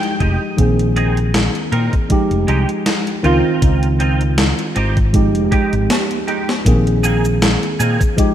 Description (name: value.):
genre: vaporwave.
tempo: 79 BPM.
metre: 4/4.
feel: swing 55% on 16ths.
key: unclear.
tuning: A4 = 440 Hz.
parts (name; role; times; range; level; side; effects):
tine electric piano; accompaniment; 0.0-8.3 s; Eb3 to Ab4; -18 LUFS; right 1 dB; wide subtle chorus, analog delay.
clean electric guitar; riff; 0.0-8.0 s; Ab3 to G5; -24 LUFS; right 3 dB; ensemble chorus, analog delay.
gated 80s digital drum machine; drums; 0.0-8.3 s; cabasa, hi-hat, snare drum; -21 LUFS; left 1 dB; gated reverb, gated reverb snare, studio reverb.
mellow fretless electric bass; bass; 0.2-8.2 s; F1 to Bb2; -17 LUFS; equal; tube saturation.
electronic kick drum; drums; 0.2-8.3 s; none; -16 LUFS; equal; studio reverb.
room: light reverb.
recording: rough home demo mix.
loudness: -13 LUFS.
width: side -10 dB against mid.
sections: 0.0-6.7 A section; 6.7-8.3 B section.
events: clean electric guitar fill 0.0-0.6; break 5.9-6.7; drum fill 5.9-6.7.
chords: 0.0 Fm9; 0.6 Bb9sus4; 2.1 Fm9; 3.2 Dbmaj9; 5.1 Fm9; 6.7 Bb9sus4.